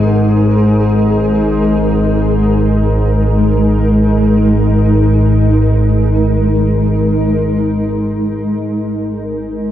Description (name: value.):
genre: ambient.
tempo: free time.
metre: none.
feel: none.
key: unclear.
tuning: A4 = 445 Hz.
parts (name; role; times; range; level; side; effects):
granular cloud pad; sustained chords; 0.0-9.7 s; G#3 to A#4; -17 LUFS; equal; built-in reverb.
analog drone; drone; 0.0-9.7 s; G#1 to G#2; -12 LUFS; equal; chorus.
flickering grainy texture; texture; 0.0-8.1 s; G#4; -28 LUFS; right 1 dB; built-in reverb.
room: wet cathedral reverb, RT60 6.0 s.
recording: worn, warbling old tape, cassette tape, warbly pitch drift.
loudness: -10 LUFS.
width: side -11 dB against mid.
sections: 0.0-8.1 A section; 8.1-9.7 B section.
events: fade-out on synth texture 0.0-8.1.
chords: 0.0 G#sus2.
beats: free time.